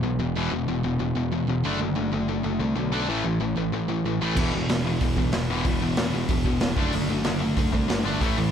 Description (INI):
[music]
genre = punk rock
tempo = 187 BPM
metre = 4/4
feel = straight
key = unclear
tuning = A4 = 441 Hz
[part]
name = sludgy distorted guitar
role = riff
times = 0.0-8.5 s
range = E2 to D4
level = -29 LUFS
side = right 10 dB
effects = overdrive
[part]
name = tight distorted guitar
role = riff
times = 0.0-8.5 s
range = E2 to D4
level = -27 LUFS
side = left 9 dB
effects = distortion
[part]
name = modern bright picked electric bass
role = bass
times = 0.0-8.5 s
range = E1 to C2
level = -30 LUFS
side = right 1 dB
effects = none
[part]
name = thick fuzz guitar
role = riff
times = 4.4-8.5 s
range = E2 to D4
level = -29 LUFS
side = right 1 dB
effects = distortion
[part]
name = raw garage drum kit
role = drums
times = 4.4-8.3 s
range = crash cymbal, hi-hat, kick drum, snare drum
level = -26 LUFS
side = right 1 dB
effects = none
[sound]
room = little or no reverb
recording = none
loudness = -22 LUFS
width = side -8 dB against mid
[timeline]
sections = 0.0-8.5 A section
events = none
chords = 0.0 E5; 1.6 D/F#; 3.1 A5; 4.4 E5; 6.8 D/F#